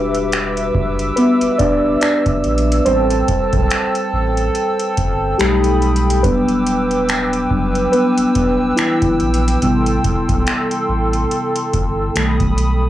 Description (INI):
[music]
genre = contemporary R&B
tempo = 71 BPM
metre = 4/4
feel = swing 58% on 16ths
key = E minor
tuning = A4 = 441 Hz
[part]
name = muted felt-like synth keys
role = accompaniment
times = 0.0-12.9 s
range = C3 to E5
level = -17 LUFS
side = equal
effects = chorus
[part]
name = hollow soft pad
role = sustained chords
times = 0.0-12.9 s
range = A4 to E6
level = -20 LUFS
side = equal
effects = chorus
[part]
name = warm sub bass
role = bass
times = 0.0-12.9 s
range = E1 to B1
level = -20 LUFS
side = right 1 dB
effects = none
[part]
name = booming analog drum machine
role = drums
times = 0.1-12.8 s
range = finger snaps, hi-hat, kick drum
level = -20 LUFS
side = equal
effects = soft clipping on snare
[sound]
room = little or no reverb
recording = blown-out, overdriven recording, overdrive, studio ambience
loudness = -14 LUFS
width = side -13 dB against mid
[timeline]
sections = 0.0-12.9 A section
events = synth keys solo 0.0-12.9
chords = 0.0 Em7; 2.9 Am7; 5.4 Baug7; 6.2 Em7; 9.6 Am7; 12.2 Baug7